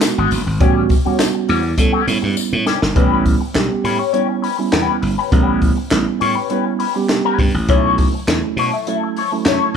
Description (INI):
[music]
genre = funk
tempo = 102 BPM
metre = 4/4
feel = straight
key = unclear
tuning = A4 = 440 Hz
[part]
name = electric guitar with an envelope filter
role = accompaniment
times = 0.0-9.7 s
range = G3 to E5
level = -20 LUFS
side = left 10 dB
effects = wah
[part]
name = mellow tine electric piano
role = stabs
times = 0.0-9.8 s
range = F#3 to A4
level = -20 LUFS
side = right 7 dB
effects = none
[part]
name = compact cocktail drum kit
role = drums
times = 0.0-9.6 s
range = handclaps, hi-hat, kick drum, snare drum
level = -18 LUFS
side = left 1 dB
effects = none
[part]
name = tambourine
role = percussion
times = 0.0-2.8 s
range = none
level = -30 LUFS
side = left 6 dB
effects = none
[part]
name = glassy slap bass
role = bass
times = 0.2-9.8 s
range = F#1 to B2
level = -20 LUFS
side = equal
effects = none
[sound]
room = light reverb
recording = band playing live in one room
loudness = -14 LUFS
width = side -7 dB against mid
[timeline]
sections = 0.0-3.0 A section; 3.0-9.8 B section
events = drum fill 2.4-3.0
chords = 0.0 E9 (rootless); 0.6 A13; 3.0 A9; 7.7 B9sus4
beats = 0.02 | 0.61 1.19 1.78 2.37 | 2.96 3.55 4.14 4.73 | 5.32 5.91 6.50 7.09 | 7.69 8.28 8.87 9.46